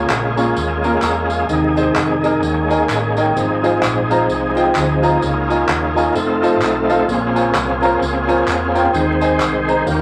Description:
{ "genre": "uptempo gospel", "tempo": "129 BPM", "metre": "4/4", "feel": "swing 59% on 8ths", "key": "Ab major", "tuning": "A4 = 439 Hz", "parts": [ { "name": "warm grand piano", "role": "accompaniment", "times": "0.0-10.0 s", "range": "Ab2 to Bb5", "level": "-20 LUFS", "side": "equal", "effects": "none" }, { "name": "overdriven tonewheel organ", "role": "sustained chords", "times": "0.0-10.0 s", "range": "C3 to C5", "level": "-20 LUFS", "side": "equal", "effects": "slow rotary speaker, chorus vibrato" }, { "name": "hollow-body short-scale fingered electric bass", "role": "bass", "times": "0.0-10.0 s", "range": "F1 to F2", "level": "-27 LUFS", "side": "equal", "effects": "none" }, { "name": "handclaps and tambourine", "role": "percussion", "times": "0.1-10.0 s", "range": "none", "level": "-26 LUFS", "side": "equal", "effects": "none" } ], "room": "wet club reverb, RT60 0.7 s", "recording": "vinyl crackle", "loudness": "-16 LUFS", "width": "mono", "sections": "0.0-10.0 A section", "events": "none", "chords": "0.0 Db6; 1.5 Ab/Eb; 2.4 Eb7sus4; 3.4 Ab6; 5.2 Db69; 6.2 F7; 7.1 Bbm9; 8.9 Ab/Eb" }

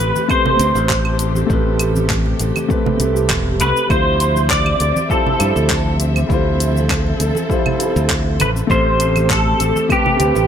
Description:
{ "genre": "sunset chillout", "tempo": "100 BPM", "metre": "4/4", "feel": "straight", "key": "D dorian", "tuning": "A4 = 441 Hz", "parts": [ { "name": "pedal steel guitar", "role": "melody", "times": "0.0-10.5 s", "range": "G4 to D5", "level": "-18 LUFS", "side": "equal", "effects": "ensemble chorus, ping-pong delay" }, { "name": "dark concert grand piano", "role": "accompaniment", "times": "0.0-10.5 s", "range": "G3 to C5", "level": "-21 LUFS", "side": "moving between left 5 dB and right 3 dB", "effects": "auto-pan, ping-pong delay" }, { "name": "dark symphonic string section", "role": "sustained chords", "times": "0.0-10.5 s", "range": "C3 to E5", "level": "-25 LUFS", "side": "equal", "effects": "none" }, { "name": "modern bright fingered electric bass", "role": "bass", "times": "0.0-10.5 s", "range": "E1 to G2", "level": "-18 LUFS", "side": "equal", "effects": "none" }, { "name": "deep house drum kit", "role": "drums", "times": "0.0-10.5 s", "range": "claves, handclaps, hi-hat, shaker", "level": "-23 LUFS", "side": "equal", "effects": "none" }, { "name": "bongos and congas", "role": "percussion", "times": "0.0-10.5 s", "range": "none", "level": "-27 LUFS", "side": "right 4 dB", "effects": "none" }, { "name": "electronic kick drum", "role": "drums", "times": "0.3-10.0 s", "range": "none", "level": "-22 LUFS", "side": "equal", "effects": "none" } ], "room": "light reverb, small room ambience", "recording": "bright 1980s-style digital production", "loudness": "-14 LUFS", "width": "side -8 dB against mid", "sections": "0.0-10.5 A section", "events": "none", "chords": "0.0 Am9; 3.9 Dm11; 8.7 Am9" }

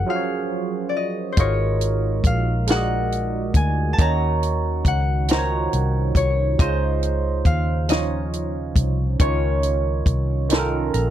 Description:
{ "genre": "slow six-eight R&B", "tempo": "46 BPM (dotted quarters)", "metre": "6/8", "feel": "straight", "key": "Db major", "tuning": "A4 = 440 Hz", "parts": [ { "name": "concert harp", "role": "melody", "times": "0.0-11.1 s", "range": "C5 to Bb5", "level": "-26 LUFS", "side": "left 3 dB", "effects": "slapback echo" }, { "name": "barky tine electric piano", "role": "accompaniment", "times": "0.0-11.1 s", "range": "Db3 to Bb5", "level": "-25 LUFS", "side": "right 6 dB", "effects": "phaser" }, { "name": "vintage muted fingered electric bass", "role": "bass", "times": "0.0-11.1 s", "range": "Ab1 to Eb2", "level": "-22 LUFS", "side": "left 1 dB", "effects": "none" }, { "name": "compact cocktail drum kit", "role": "drums", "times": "1.4-11.1 s", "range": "hi-hat, kick drum, snare drum", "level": "-19 LUFS", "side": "equal", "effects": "none" } ], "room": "little or no reverb", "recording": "dry, close 1970s-style studio recording", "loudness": "-19 LUFS", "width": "side -11 dB against mid", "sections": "0.0-11.1 A section", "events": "break 0.1-1.4; tine electric piano fill 10.5-11.1", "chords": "0.0 Gbmaj9; 1.4 Absus2; 4.0 Ebm9; 6.6 Dbmaj7; 9.2 Dbmaj9" }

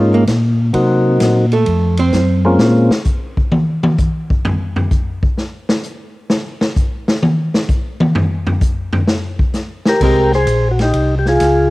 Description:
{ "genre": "soul jazz organ trio", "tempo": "129 BPM", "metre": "4/4", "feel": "swing 68% on 8ths", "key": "Ab major", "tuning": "A4 = 439 Hz", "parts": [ { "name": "percussive tonewheel organ", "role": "melody", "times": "0.0-2.9, 9.9-11.7 s", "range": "Gb3 to C5", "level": "-14 LUFS", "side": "left 1 dB", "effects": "slow rotary speaker, cassette tape" }, { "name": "archtop guitar, miked and amplified", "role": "accompaniment", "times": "0.0-2.4, 10.0-10.3 s", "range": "Ab3 to C5", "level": "-18 LUFS", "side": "right 4 dB", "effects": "cassette tape" }, { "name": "mellow tonewheel organ", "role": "bass", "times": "0.0-2.9, 10.0-11.7 s", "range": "Bb1 to C3", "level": "-14 LUFS", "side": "equal", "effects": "chorus vibrato, slow rotary speaker" }, { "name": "swinging big-band drum kit", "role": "drums", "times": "0.3-11.6 s", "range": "crash cymbal, hi-hat, kick drum, ride cymbal, snare drum, toms", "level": "-16 LUFS", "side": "equal", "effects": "cassette tape" } ], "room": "studio reverb", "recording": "home recording on cassette", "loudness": "-13 LUFS", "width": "side -20 dB against mid", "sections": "0.0-10.0 A section; 10.0-11.7 B section", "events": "hollow-body jazz guitar solo 0.0-10.0; drum solo 2.6-10.0", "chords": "0.0 Db69; 0.7 Cm7b5; 1.7 F; 2.6 Bbm7; 4.5 N.C.; 10.0 Abmaj9" }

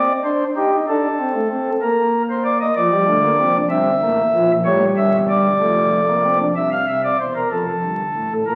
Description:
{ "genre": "classical, baroque-style 3-part fugue for pipe organ", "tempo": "63 BPM (dotted quarters)", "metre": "6/8", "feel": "straight", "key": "unclear", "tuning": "A4 = 441 Hz", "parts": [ { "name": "pipe organ, flutes", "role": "solo", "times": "0.0-8.6 s", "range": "E1 to F5", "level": "-18 LUFS", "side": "equal", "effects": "none" } ], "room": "wet recital hall reverb, RT60 1.4 s", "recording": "very old 78 rpm record, vinyl crackle", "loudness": "-18 LUFS", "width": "mono", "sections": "0.0-6.6 A section; 6.6-8.6 B section", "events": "none", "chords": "0.0 Cmadd9; 0.9 D5; 1.8 Bbadd9; 2.8 Dm; 3.7 Edim/G; 4.7 A7; 5.6 Dm/F; 6.6 C7; 7.5 F" }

